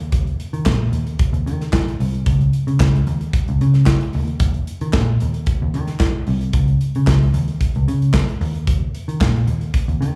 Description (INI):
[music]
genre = disco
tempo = 112 BPM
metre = 4/4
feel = straight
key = unclear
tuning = A4 = 439 Hz
[part]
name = vintage muted picked electric bass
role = bass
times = 0.0-10.2 s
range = C2 to Eb3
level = -20 LUFS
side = equal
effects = none
[part]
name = modern studio drum kit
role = drums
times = 0.0-10.1 s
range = handclaps, hi-hat, kick drum, snare drum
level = -22 LUFS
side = equal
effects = none
[sound]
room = light reverb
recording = live gig heard through the venue's PA, club reverb, small room ambience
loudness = -18 LUFS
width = mono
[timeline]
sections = 0.0-10.2 A section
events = none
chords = none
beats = | 0.13 0.66 1.20 1.73 | 2.26 2.80 3.33 3.87 | 4.40 4.93 5.47 6.00 | 6.54 7.07 7.61 8.14 | 8.68 9.21 9.75